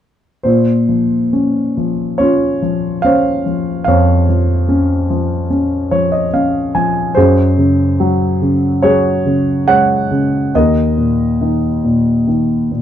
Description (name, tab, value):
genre	classical, lyrical solo piano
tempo	71 BPM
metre	4/4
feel	uneven beats, rubato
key	Bb minor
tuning	A4 = 440 Hz
part	warm concert grand piano	solo	0.4-12.8 s	Eb2 to Ab5	-12 LUFS	equal	none
room	moderate small room reverb, RT60 0.5 s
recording	dark, warm production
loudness	-12 LUFS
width	side -10 dB against mid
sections	0.5-12.8 A section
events	grand piano fill 5.5-7.2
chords	0.5 Bbmadd9; 7.2 Gbsus2; 10.5 Eb5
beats	| 0.46 1.33 2.20 3.05 | 3.88 4.70 5.51 6.33 | 7.16 7.99 8.82 9.67 | 10.54 11.40 12.27